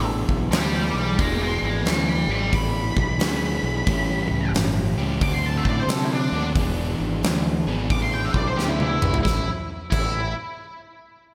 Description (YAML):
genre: blues rock power trio and southern rock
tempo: 89 BPM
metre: 4/4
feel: swing 65% on 8ths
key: unclear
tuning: A4 = 440 Hz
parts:
  - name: octave-fuzz lead guitar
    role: melody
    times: 0.0-10.3 s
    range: D4 to D6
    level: -30 LUFS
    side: equal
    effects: wah, distortion, slapback echo
  - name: overdriven semi-hollow guitar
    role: riff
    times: 0.0-9.2 s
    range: A2 to G#4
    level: -29 LUFS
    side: equal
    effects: none
  - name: growling fingered electric bass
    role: bass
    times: 0.0-10.3 s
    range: E1 to C3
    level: -28 LUFS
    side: equal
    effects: overdrive
  - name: huge arena drum kit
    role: drums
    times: 0.3-10.1 s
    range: crash cymbal, hi-hat, kick drum, snare drum, toms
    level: -28 LUFS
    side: equal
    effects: none
room: moderate lush hall reverb, RT60 2.5 s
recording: big arena sound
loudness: -23 LUFS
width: mono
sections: 0.0-9.3 A section; 9.3-11.3 B section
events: lead electric guitar solo 0.0-9.3; drum fill 8.6-9.3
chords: 0.0 E7; 3.9 A7; 5.2 D7; 6.6 E7; 9.3 A5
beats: 0.52 | 1.19 1.86 2.53 3.20 | 3.87 4.54 5.21 5.89 | 6.56 7.23 7.90 8.58 | 9.25 9.92